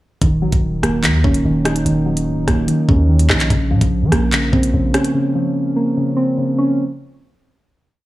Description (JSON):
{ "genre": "hip hop, drill", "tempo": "146 BPM", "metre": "4/4", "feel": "half-time", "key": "Bb minor", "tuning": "A4 = 441 Hz", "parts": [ { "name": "soft electric-piano-like synth keys", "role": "accompaniment", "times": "0.2-6.8 s", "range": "Db3 to Eb4", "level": "-16 LUFS", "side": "equal", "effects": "chorus" }, { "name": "long sustained 808-style bass", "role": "bass", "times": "0.2-4.9 s", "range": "Db1 to F3", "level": "-18 LUFS", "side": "equal", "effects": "none" }, { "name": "drill drum kit", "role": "drums", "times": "0.2-5.1 s", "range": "handclaps, hi-hat, kick drum, rim click", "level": "-18 LUFS", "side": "equal", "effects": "none" } ], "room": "digital ambience", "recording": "small room ambience", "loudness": "-14 LUFS", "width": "side -16 dB against mid", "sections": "0.2-6.8 hook", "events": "none", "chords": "0.2 Ebm7; 3.5 Bbmadd9" }